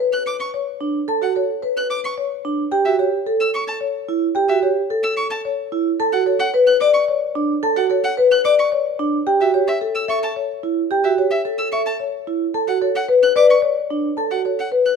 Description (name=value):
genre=classical, minimalist pattern music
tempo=110 BPM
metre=3/4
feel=straight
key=unclear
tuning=A4 = 443 Hz
part: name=marimba with medium mallets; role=melody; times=0.0-14.9 s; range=A4 to A5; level=-20 LUFS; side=left 7 dB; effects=none
part: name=vibraphone with medium mallets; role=arpeggios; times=0.0-14.9 s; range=D4 to B4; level=-19 LUFS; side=right 5 dB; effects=none
part: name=rich violin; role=arpeggios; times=0.1-15.0 s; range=E5 to F#6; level=-24 LUFS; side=equal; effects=none
room=moderate large studio reverb, RT60 1.3 s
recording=none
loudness=-16 LUFS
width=side -6 dB against mid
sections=0.0-15.0 A section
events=none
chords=0.0 Bm7; 2.7 A7; 6.0 Bm7; 9.3 A7; 12.5 B7(no3)